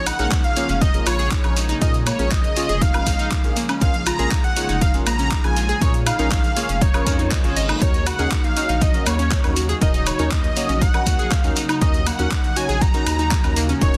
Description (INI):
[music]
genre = progressive house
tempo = 120 BPM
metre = 4/4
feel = straight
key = Eb minor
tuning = A4 = 440 Hz
[part]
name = unison lead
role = melody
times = 0.0-14.0 s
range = Db5 to Bb5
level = -28 LUFS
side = equal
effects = vintage 12-bit sampler grit, sidechain pumping, dub echo
[part]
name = airy dreamy lead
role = second line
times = 0.0-14.0 s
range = Db5 to Bb5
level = -36 LUFS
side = equal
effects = none
[part]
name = airy breathy pad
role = sustained chords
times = 0.0-14.0 s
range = Db3 to Ab4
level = -34 LUFS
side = equal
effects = chorus, phaser, sidechain pumping
[part]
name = saturated sub bass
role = bass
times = 0.0-14.0 s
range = Eb1 to Bb2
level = -27 LUFS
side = equal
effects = sidechain pumping
[part]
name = analog pluck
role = arpeggios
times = 0.1-13.9 s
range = Bb3 to Eb5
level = -30 LUFS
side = equal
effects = chorus, cassette tape, sidechain pumping, digital delay
[part]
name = house drum kit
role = drums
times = 0.1-14.0 s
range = handclaps, hi-hat, woodblock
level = -30 LUFS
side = equal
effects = soft clipping on snare
[part]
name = shekere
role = percussion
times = 0.1-14.0 s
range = none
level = -36 LUFS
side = equal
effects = none
[part]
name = deep mellow chord stab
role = stabs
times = 0.2-13.9 s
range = Db4 to Db5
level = -32 LUFS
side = equal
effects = chorus, cassette tape, sidechain pumping, digital delay
[part]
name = electronic kick drum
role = drums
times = 0.3-13.9 s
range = none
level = -22 LUFS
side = equal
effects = overdrive
[part]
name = reverse cymbal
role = sound effects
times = 7.3-7.8 s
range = none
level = -36 LUFS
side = equal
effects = none
[sound]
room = little or no reverb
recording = dense, heavily limited modern master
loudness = -19 LUFS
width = mono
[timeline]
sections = 0.0-14.0 A section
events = reverse cymbal 7.3-7.8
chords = 0.0 Bbm7; 7.8 Ebm7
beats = 0.32 0.81 1.31 | 1.81 2.31 2.81 3.31 | 3.81 4.32 4.82 5.32 | 5.82 6.32 6.82 7.32 | 7.82 8.31 8.81 9.31 | 9.81 10.31 10.81 11.31 | 11.81 12.31 12.81 13.31 | 13.81